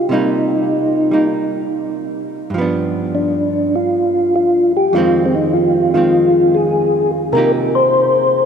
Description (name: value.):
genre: jazz.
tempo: 99 BPM.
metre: 4/4.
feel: swing 69% on 8ths.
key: C minor.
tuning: A4 = 440 Hz.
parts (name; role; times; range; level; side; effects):
percussive tonewheel organ; melody; 0.0-8.5 s; C4 to C5; -14 LUFS; left 1 dB; slow rotary speaker, chorus vibrato.
archtop guitar, miked and amplified; accompaniment; 0.0-8.5 s; F2 to G4; -20 LUFS; right 3 dB; none.
room: wet cathedral reverb, RT60 6.9 s.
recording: in a vast, echoing space.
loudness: -13 LUFS.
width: side -7 dB against mid.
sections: 0.0-8.5 A section.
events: none.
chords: 0.0 Cm7; 2.5 G7; 4.9 Fm7; 7.3 Cm7.